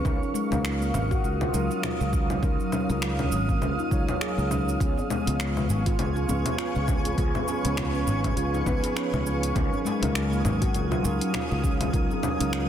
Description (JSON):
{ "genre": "organic downtempo", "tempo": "101 BPM", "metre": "4/4", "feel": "swing 57% on 16ths", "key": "unclear", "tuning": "A4 = 443 Hz", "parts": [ { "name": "muted felt-like synth keys", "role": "accompaniment", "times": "0.0-12.7 s", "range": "F3 to F5", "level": "-33 LUFS", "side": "left 2 dB", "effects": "chorus, sidechain pumping, digital delay" }, { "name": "granular cloud pad", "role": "sustained chords", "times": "0.0-12.7 s", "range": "Gb3 to Eb6", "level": "-32 LUFS", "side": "equal", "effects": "built-in reverb, sidechain pumping" }, { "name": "handpan", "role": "arpeggios", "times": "0.0-12.5 s", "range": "Ab3 to Ab4", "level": "-31 LUFS", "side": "right 2 dB", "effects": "digital delay" }, { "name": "sustaining fretless electric bass", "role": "bass", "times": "0.1-12.7 s", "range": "Ab1 to Db2", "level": "-28 LUFS", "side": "equal", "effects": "wide subtle chorus, sidechain pumping" }, { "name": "deep house drum kit", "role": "drums", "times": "0.1-12.7 s", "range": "congas, finger snaps, hi-hat, shaker", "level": "-32 LUFS", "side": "left 2 dB", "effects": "overdrive, soft clipping on snare" }, { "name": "electronic kick drum", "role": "drums", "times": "0.1-12.1 s", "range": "none", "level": "-27 LUFS", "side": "equal", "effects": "overdrive" }, { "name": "twinkling granular texture", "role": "texture", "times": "5.2-12.7 s", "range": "Ab4 to Ab5", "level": "-39 LUFS", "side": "right 2 dB", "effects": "built-in reverb" }, { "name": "djembe", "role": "percussion", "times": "5.0-12.4 s", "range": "none", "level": "-36 LUFS", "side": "left 2 dB", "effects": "none" } ], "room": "light reverb, digital ambience", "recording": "dense, heavily limited modern master", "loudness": "-23 LUFS", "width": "side -10 dB against mid", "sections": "0.0-12.7 A section", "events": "none", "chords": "0.1 Ebmadd9; 4.8 Db7; 9.6 Ebmadd9" }